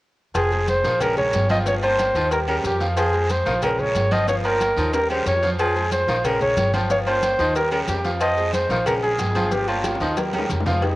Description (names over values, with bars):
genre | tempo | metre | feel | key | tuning
latin, salsa | 183 BPM | 4/4 | straight | F minor | A4 = 442 Hz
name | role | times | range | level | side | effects
clear baritone saxophone | second line | 0.3-10.6 s | Db3 to F3 | -29 LUFS | left 1 dB | cassette tape
upright bass | bass | 0.3-11.0 s | F1 to F2 | -26 LUFS | equal | none
agogo bells and timbales | percussion | 0.3-11.0 s | none | -30 LUFS | right 2 dB | none
cowbell and bongos | percussion | 0.3-11.0 s | none | -31 LUFS | left 4 dB | none
maracas | percussion | 0.3-10.8 s | none | -39 LUFS | left 5 dB | none
warm flugelhorn | melody | 0.4-10.2 s | F4 to Eb5 | -22 LUFS | equal | cassette tape
congas | percussion | 0.4-11.0 s | none | -32 LUFS | equal | none
guiro | percussion | 0.4-11.0 s | none | -35 LUFS | right 3 dB | none
bright grand piano | accompaniment | 0.5-11.0 s | Eb3 to F5 | -27 LUFS | right 1 dB | cassette tape
room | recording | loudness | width
light reverb, studio reverb | home recording on cassette | -18 LUFS | side -18 dB against mid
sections
0.3-10.8 A section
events
drum fill 4.9-5.6, 9.8-10.8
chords
0.3 Fm; 1.0 Bbm7; 1.7 Gm7b5; 2.3 Eb7; 3.0 Fm; 3.6 Bbm7; 4.3 Gm7b5; 4.9 Eb7; 5.6 Fm; 6.2 Bbm7; 6.9 Gm7b5; 7.6 Eb7; 8.2 Fm7; 8.9 Bbm7; 9.5 Gm7b5; 10.2 Eb7